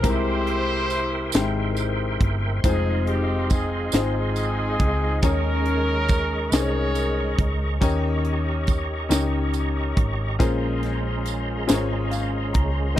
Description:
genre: slow gospel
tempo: 46 BPM (dotted quarters)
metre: 6/8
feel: straight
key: unclear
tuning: A4 = 440 Hz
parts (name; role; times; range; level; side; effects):
- warm horn section; melody; 0.0-7.8 s; C4 to Db5; -26 LUFS; equal; none
- clear grand piano; accompaniment; 0.0-13.0 s; Bb2 to Bb5; -27 LUFS; left 5 dB; none
- bright tonewheel organ; sustained chords; 0.0-13.0 s; Ab3 to Db6; -31 LUFS; right 2 dB; slow rotary speaker, chorus vibrato
- hollow-body short-scale fingered electric bass; bass; 0.0-12.9 s; F1 to Eb2; -25 LUFS; right 1 dB; none
- crisp fusion drum kit; drums; 0.0-13.0 s; hi-hat, kick drum, snare drum; -22 LUFS; equal; none
- tambourine; percussion; 0.0-12.5 s; none; -34 LUFS; right 20 dB; none
room: little or no reverb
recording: dry, close 1970s-style studio recording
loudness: -20 LUFS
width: side -12 dB against mid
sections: 0.0-13.0 A section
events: grand piano fill 11.7-13.0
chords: 0.0 C7b13; 2.6 Fm7; 5.2 Eb7sus4; 7.8 Eb7; 10.4 Bbm9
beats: | 0.04 1.34 | 2.64 3.93 | 5.23 6.52 | 7.82 9.11 | 10.40 11.69 | 12.98

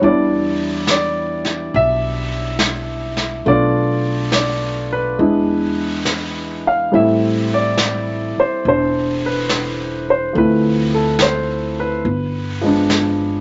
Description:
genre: jazz ballad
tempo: 70 BPM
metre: 4/4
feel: swing 68% on 8ths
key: unclear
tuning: A4 = 440 Hz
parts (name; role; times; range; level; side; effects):
- warm grand piano; accompaniment; 0.0-13.4 s; F3 to F5; -19 LUFS; equal; none
- upright bass; bass; 0.0-13.4 s; E1 to E2; -25 LUFS; equal; none
- vintage brush drum kit; drums; 0.0-13.4 s; brushed snare drum, hi-hat, snare drum; -25 LUFS; equal; none
room: moderate small room reverb, RT60 0.5 s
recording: nothing above 7.8 kHz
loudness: -18 LUFS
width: mono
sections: 0.0-13.4 A section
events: none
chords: 0.0 Em7; 3.5 Bm7b5; 5.2 E7; 6.9 Am9; 10.3 Dm9; 12.0 G7b9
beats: | 0.02 0.87 1.73 2.59 | 3.46 4.32 5.18 6.05 | 6.92 7.78 8.64 9.49 | 10.34 11.19 12.04 12.89

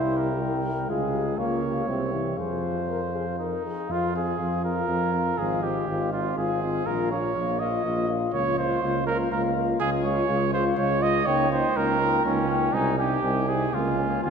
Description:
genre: classical, brass quintet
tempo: 122 BPM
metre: 3/4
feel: straight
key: F minor, Ab major from 9.8 s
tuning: A4 = 439 Hz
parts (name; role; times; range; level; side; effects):
- dark cornet; melody; 0.0-14.3 s; E5 to Ab5; -31 LUFS; left 8 dB; none
- warm trumpet; second line; 0.0-14.3 s; Db4 to Eb5; -28 LUFS; right 4 dB; none
- clear French horn; accompaniment; 0.0-14.3 s; C4 to Bb4; -31 LUFS; left 6 dB; none
- clear trombone; accompaniment; 0.0-14.3 s; E3 to E4; -32 LUFS; right 2 dB; none
- warm tuba; bass; 0.0-14.3 s; Ab1 to F2; -28 LUFS; right 2 dB; none
room: wet church reverb, RT60 2.8 s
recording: dark, warm production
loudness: -23 LUFS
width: side -6 dB against mid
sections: 0.0-3.9 A section; 3.9-14.3 B section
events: none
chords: 0.0 C; 0.9 Db; 1.4 Bbm6/Db; 1.9 C; 2.4 Fm; 5.4 Fm/Ab; 6.9 Bbm; 8.3 Bbm/Db; 9.8 Db; 11.3 Eb7/Db; 12.7 Ab/C; 13.7 Bbm7/Db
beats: 0.41 | 0.89 1.38 1.88 | 2.38 2.88 3.39 | 3.90 4.39 4.88 | 5.38 5.88 6.37 | 6.87 7.36 7.85 | 8.34 8.83 9.32 | 9.80 10.29 10.78 | 11.27 11.76 12.25 | 12.74 13.23 13.73 | 14.24

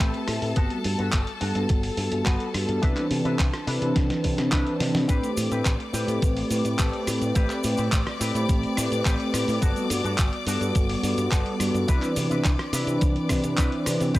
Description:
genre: nu-disco, nu disco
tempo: 106 BPM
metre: 4/4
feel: straight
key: unclear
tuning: A4 = 439 Hz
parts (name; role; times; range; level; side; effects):
- warm analog pad; accompaniment; 0.0-14.2 s; E3 to B5; -26 LUFS; equal; chorus, tape echo
- clear studio violin section; sustained chords; 0.0-14.2 s; A4 to D6; -34 LUFS; left 3 dB; sidechain pumping
- electric guitar with an envelope filter; riff; 0.0-14.2 s; B3 to E5; -35 LUFS; left 2 dB; lush chorus, vintage 12-bit sampler grit, tape echo
- picked electric bass with an envelope filter; bass; 0.0-14.2 s; G1 to C3; -29 LUFS; equal; none
- dusty soul sampler-style drum kit; drums; 0.0-14.2 s; handclaps, hi-hat, rim click, snare drum; -31 LUFS; equal; none
- electronic kick drum; drums; 0.0-14.2 s; none; -23 LUFS; equal; overdrive
- cabasa; percussion; 5.1-14.2 s; none; -36 LUFS; right 2 dB; none
room: little or no reverb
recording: dry, gritty hardware recording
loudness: -22 LUFS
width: side -17 dB against mid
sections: 0.0-14.2 A section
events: clean electric guitar fill 0.0-0.6; filter sweep on analog synth pad 0.0-14.2; drum fill 4.0-5.1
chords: 0.0 Am9; 0.6 Gmaj9; 2.8 Cmaj9; 5.1 Am9; 9.6 Gmaj9; 11.9 Cmaj9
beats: 0.00 | 0.57 1.13 1.70 2.27 | 2.83 3.40 3.96 4.53 | 5.09 5.66 6.23 6.79 | 7.36 7.92 8.49 9.06 | 9.62 10.19 10.76 11.32 | 11.89 12.45 13.02 13.59 | 14.15

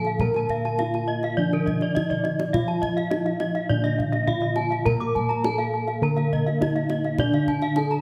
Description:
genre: Balinese gamelan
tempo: 103 BPM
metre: 4/4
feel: straight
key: D pelog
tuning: A4 = 440 Hz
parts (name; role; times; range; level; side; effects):
- gamelan-type bronze metallophone; melody; 0.0-8.0 s; D4 to Bb4-20c; -31 LUFS; equal; none
- gamelan-type bronze metallophone; accompaniment; 0.0-8.0 s; D3 to Bb3-20c; -34 LUFS; equal; none
- gamelan-type bronze metallophone; arpeggios; 0.0-7.9 s; D5 to Bb5-20c; -31 LUFS; equal; none
- gamelan-type bossed gongs; bass; 0.0-8.0 s; Bb2-20c to Bb4-20c; -29 LUFS; equal; none
- kendang; percussion; 0.0-8.0 s; none; -33 LUFS; equal; none
- gamelan-type bronze metallophone; arpeggios; 0.1-8.0 s; Bb4-20c to D6; -34 LUFS; equal; none
room: moderate recital hall reverb, RT60 1.7 s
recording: none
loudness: -24 LUFS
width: mono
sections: 0.0-8.0 A section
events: drum fill 2.1-2.5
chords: none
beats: | 0.21 0.79 1.37 1.95 | 2.54 3.12 3.70 4.28 | 4.87 5.45 6.03 6.61 | 7.20 7.78

